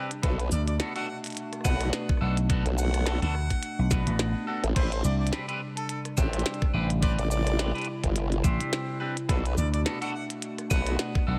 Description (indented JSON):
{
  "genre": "glitch hop",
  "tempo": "106 BPM",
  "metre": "4/4",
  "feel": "swing 57% on 16ths",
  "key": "unclear",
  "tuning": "A4 = 445 Hz",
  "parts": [
    { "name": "warbly tape-like pad", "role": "sustained chords", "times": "0.0-11.4 s", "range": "B2 to E4", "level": "-38 LUFS", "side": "equal", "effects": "chorus, built-in reverb, sidechain pumping" },
    { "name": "clean electric guitar", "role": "stabs", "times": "0.0-11.4 s", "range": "B3 to C5", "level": "-38 LUFS", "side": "equal", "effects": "phaser, sidechain pumping, digital delay" },
    { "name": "glitchy drum kit", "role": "drums", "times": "0.1-11.2 s", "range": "crash cymbal, hi-hat, rim click, shaker, snare drum", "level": "-36 LUFS", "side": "equal", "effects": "none" },
    { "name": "mellow harmonica", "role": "melody", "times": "0.2-11.0 s", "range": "A4 to F#5", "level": "-40 LUFS", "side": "equal", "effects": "digital delay" },
    { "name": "formant-sweep wobble bass", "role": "bass", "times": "0.2-11.0 s", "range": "G1 to B1", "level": "-30 LUFS", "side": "equal", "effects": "chorus, overdrive" },
    { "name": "electronic kick drum", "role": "drums", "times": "0.2-11.2 s", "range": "none", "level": "-29 LUFS", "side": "equal", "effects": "none" },
    { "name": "vintage slap bass", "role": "bass", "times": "0.5-11.4 s", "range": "A1 to D2", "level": "-28 LUFS", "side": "equal", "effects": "tube saturation" }
  ],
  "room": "little or no reverb",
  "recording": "none",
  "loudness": "-28 LUFS",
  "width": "mono",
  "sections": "0.0-11.4 A section",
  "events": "none",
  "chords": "0.2 Bm7; 4.8 Am11; 9.3 Bm7"
}